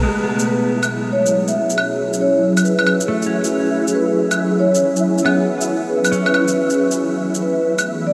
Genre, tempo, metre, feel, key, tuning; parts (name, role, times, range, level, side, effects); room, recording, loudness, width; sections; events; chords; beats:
future garage; 138 BPM; 4/4; swing 64% on 16ths; A4 = 440 Hz
clean electric guitar; accompaniment; 0.0-7.2 s; G#3 to C#4; -27 LUFS; equal; delay
ethereal airy pad; sustained chords; 0.0-8.1 s; E3 to G#4; -22 LUFS; equal; ensemble chorus, built-in reverb, phaser, vintage 12-bit sampler grit
flickering grainy texture; texture; 0.4-8.1 s; E4 to E5; -30 LUFS; equal; built-in reverb, ensemble chorus
shaker and claves; drums; 0.4-7.8 s; -26 LUFS; equal; overdrive
vibraphone with medium mallets; melody; 0.5-8.1 s; B4 to E5; -23 LUFS; equal; delay
wet huge ambient reverb, RT60 6.3 s; dreamy mix soaked in reverb; -17 LUFS; mono
0.0-8.1 A section
filter sweep on ambient pad 0.0-8.1
0.0 F#m9; 7.0 E7sus4
| 0.04 0.47 0.91 1.34 | 1.78 2.21 2.65 3.08 | 3.52 3.95 4.38 4.82 | 5.25 5.69 6.12 6.56 | 6.99 7.43 7.86